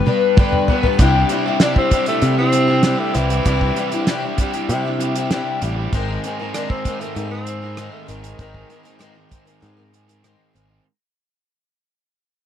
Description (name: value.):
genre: folk rock and heartland rock.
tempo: 97 BPM.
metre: 4/4.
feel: straight.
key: unclear.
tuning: A4 = 441 Hz.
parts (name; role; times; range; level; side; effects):
picked twelve-string acoustic guitar; accompaniment; 0.0-10.9 s; G2 to B4; -22 LUFS; left 6 dB; none.
overdriven semi-hollow guitar; riff; 0.0-10.8 s; G2 to Ab4; -23 LUFS; right 2 dB; none.
damped 70s drum kit; drums; 0.1-10.7 s; hi-hat, kick drum, rim click, snare drum, toms; -17 LUFS; equal; none.
picked electric bass; bass; 1.0-10.8 s; Ab1 to C3; -20 LUFS; equal; none.
clear tenor saxophone; melody; 1.6-9.3 s; Eb3 to D4; -23 LUFS; equal; none.
room: little or no reverb.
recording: dry, close 1970s-style studio recording.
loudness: -16 LUFS.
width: side -10 dB against mid.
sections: 1.0-10.9 A section.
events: drum fill 0.0-1.0; fade-out 1.0-10.9; tenor saxophone solo 1.0-10.9.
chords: 0.0 G; 1.0 Cadd9; 5.9 Abadd9.